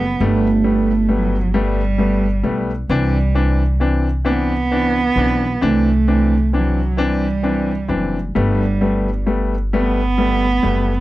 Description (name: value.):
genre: six-eight pop ballad.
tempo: 44 BPM (dotted quarters).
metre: 6/8.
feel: straight.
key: G major.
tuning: A4 = 439 Hz.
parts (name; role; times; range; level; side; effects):
dark cello; melody; 0.0-11.0 s; F#3 to B3; -19 LUFS; right 4 dB; none.
upright bass; bass; 0.0-11.0 s; F#1 to C2; -19 LUFS; equal; none.
clear baby grand piano; accompaniment; 0.2-10.9 s; E3 to D4; -20 LUFS; left 3 dB; none.
room: little or no reverb.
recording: dry, close 1970s-style studio recording.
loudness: -15 LUFS.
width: side -16 dB against mid.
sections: 0.0-11.0 A section.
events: none.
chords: 0.0 Gadd9; 2.9 Cadd9; 8.4 Gadd9.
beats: | 0.20 1.55 | 2.90 4.25 | 5.62 6.99 | 8.36 9.73.